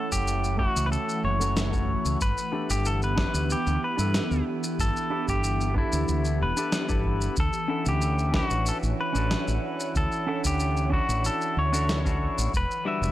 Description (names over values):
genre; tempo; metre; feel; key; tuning
sunset chillout; 93 BPM; 4/4; straight; D major; A4 = 441 Hz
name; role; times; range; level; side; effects
pedal steel guitar; melody; 0.0-13.1 s; E4 to E5; -29 LUFS; left 1 dB; analog delay
semi-hollow electric guitar; accompaniment; 0.0-13.1 s; G3 to F#5; -32 LUFS; moving between left 5 dB and right 5 dB; auto-pan, low-pass filter
ethereal airy pad; sustained chords; 0.0-13.1 s; D3 to F#5; -34 LUFS; right 1 dB; ensemble chorus, built-in reverb
mellow fretless electric bass; bass; 0.1-13.1 s; E1 to G2; -27 LUFS; equal; none
electronic kick drum; drums; 0.1-12.7 s; none; -29 LUFS; equal; none
electronic shaker and snare drum; drums; 0.1-13.1 s; none; -32 LUFS; equal; none
room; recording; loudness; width
digital ambience; dry, gritty hardware recording; -23 LUFS; side -14 dB against mid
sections
0.0-13.1 A section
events
filter sweep on clean electric guitar 0.0-13.1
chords
0.0 F#m7; 2.2 G6; 7.4 Dmaj9; 12.5 Em9